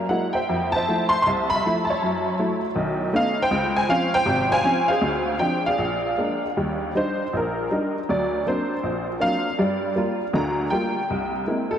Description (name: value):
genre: solo jazz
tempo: 159 BPM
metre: 4/4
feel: swing 67% on 8ths, rubato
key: Eb major from 6.6 s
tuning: A4 = 438 Hz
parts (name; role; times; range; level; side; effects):
- honky-tonk upright piano; solo; 0.0-11.8 s; Ab1 to C6; -20 LUFS; equal; tape echo
room: wet huge ambient reverb, RT60 4.5 s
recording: dreamy mix soaked in reverb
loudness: -20 LUFS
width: side -9 dB against mid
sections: 0.0-6.6 A section; 6.6-11.8 B section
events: honky-tonk piano solo 6.6-11.8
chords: 0.5 Fmaj7; 2.0 F#m7; 2.8 B9; 3.5 Dbmaj7; 5.0 Dm7b5; 5.8 Bb7; 6.6 Ebmaj7; 8.1 D7alt; 9.6 Gm7; 11.1 C7b13